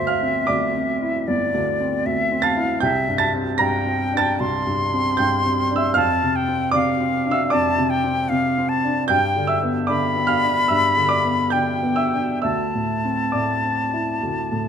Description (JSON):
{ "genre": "classical, impressionist duo for flute and grand piano", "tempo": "65-79 BPM", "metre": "4/4", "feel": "rubato", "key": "D minor", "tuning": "A4 = 441 Hz", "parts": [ { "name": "silver concert flute", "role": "melody", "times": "0.0-14.7 s", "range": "D5 to C6", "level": "-22 LUFS", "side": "left 2 dB", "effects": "none" }, { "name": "warm baby grand piano", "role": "accompaniment", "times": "0.0-14.7 s", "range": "G1 to Bb6", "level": "-20 LUFS", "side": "right 1 dB", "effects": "none" } ], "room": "moderate recital hall reverb, RT60 1.5 s", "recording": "close, detailed microphones", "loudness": "-18 LUFS", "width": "side -8 dB against mid", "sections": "0.0-14.7 A section", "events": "none", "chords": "0.0 Dm9/G; 2.8 Cadd9; 6.0 F5; 9.1 G7; 12.4 Dsus2" }